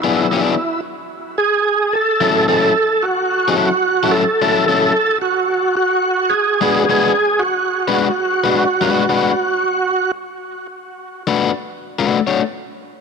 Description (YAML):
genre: funk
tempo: 109 BPM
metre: 4/4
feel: swing 60% on 16ths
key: B dorian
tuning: A4 = 440 Hz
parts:
  - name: overdriven tonewheel organ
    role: melody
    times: 0.0-10.1 s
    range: E4 to A4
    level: -16 LUFS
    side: right 2 dB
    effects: chorus vibrato, slow rotary speaker, tape echo
  - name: overdriven electric guitar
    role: accompaniment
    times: 0.0-12.4 s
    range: F#3 to C#5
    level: -18 LUFS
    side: left 7 dB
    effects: none
room: light reverb, digital ambience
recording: none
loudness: -14 LUFS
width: side -5 dB against mid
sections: 0.0-10.7 A section; 10.7-13.0 B section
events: none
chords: 0.0 E9; 1.9 F#m7; 6.3 G#m7b5; 10.7 Bm7